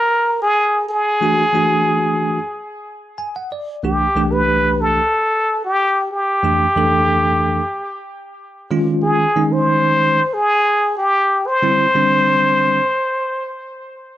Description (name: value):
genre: jazz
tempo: 92 BPM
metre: 4/4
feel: swing 54% on 16ths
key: unclear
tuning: A4 = 442 Hz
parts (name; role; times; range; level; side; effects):
- trumpet with plunger mute; melody; 0.0-13.6 s; G4 to C5; -16 LUFS; equal; none
- bell-like tine electric piano; accompaniment; 1.2-12.8 s; C2 to Ab5; -18 LUFS; right 1 dB; fast stereo tremolo
room: moderate studio ambience, RT60 0.5 s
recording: none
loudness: -14 LUFS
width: side -13 dB against mid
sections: 0.0-14.2 A section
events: tine electric piano fill 2.8-3.8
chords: 0.0 N.C.; 1.2 Dadd9; 3.8 Cadd9; 6.4 Fmaj9; 8.7 Dbmaj9; 11.6 Csus2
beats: 0.57 | 1.22 1.87 2.52 3.17 | 3.83 4.48 5.13 5.78 | 6.43 7.08 7.74 8.39 | 9.04 9.69 10.34 10.99 | 11.64 12.29 12.94